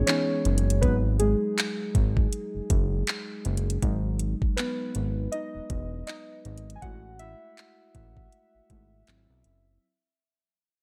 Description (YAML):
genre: contemporary R&B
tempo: 80 BPM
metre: 4/4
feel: swing 58% on 16ths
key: unclear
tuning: A4 = 440 Hz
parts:
  - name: muted felt-like synth keys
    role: accompaniment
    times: 0.0-9.8 s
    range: E3 to G#5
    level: -33 LUFS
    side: equal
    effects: chorus
  - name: fat analog bass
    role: bass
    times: 0.0-9.8 s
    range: E1 to B1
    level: -30 LUFS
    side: equal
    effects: none
  - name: smooth R&B drum kit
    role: drums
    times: 0.1-9.6 s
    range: handclaps, hi-hat, kick drum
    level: -30 LUFS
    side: equal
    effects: none
room: light reverb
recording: none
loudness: -27 LUFS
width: mono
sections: 0.0-9.8 A section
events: fade-out 0.0-9.8; synth keys solo 0.0-9.8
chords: 0.0 C#m9; 0.8 G#7(no3); 3.8 Emaj9/G#; 6.8 F#m9/A; 9.1 G#7alt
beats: 0.07 | 0.82 1.57 2.33 3.08 | 3.83 4.58 5.33 6.08 | 6.83 7.58 8.32 9.07